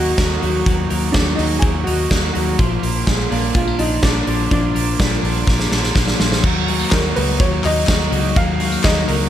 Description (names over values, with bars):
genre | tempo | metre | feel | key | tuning
jangly indie pop | 124 BPM | 4/4 | straight | unclear | A4 = 439 Hz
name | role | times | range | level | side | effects
warm upright piano | melody | 0.0-9.3 s | Ab3 to F5 | -23 LUFS | equal | slapback echo
raw garage guitar | accompaniment | 0.0-9.3 s | Bb2 to Gb4 | -26 LUFS | right 8 dB | overdrive
twelve-string electric guitar | arpeggios | 0.0-9.3 s | F3 to Eb4 | -23 LUFS | left 6 dB | slapback echo
vintage muted fingered electric bass | bass | 0.0-9.3 s | Bb1 to Eb2 | -22 LUFS | equal | none
big rock drum kit | drums | 0.2-9.2 s | crash cymbal, hi-hat, kick drum, ride cymbal, snare drum | -18 LUFS | equal | none
group handclap | percussion | 6.9-9.0 s | none | -28 LUFS | left 9 dB | none
room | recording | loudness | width
light reverb, small room ambience | none | -15 LUFS | side -11 dB against mid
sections
0.0-6.4 A section; 6.4-9.3 B section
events
drum fill 5.5-6.4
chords
0.0 Ebm; 2.6 Bb; 6.4 Ebm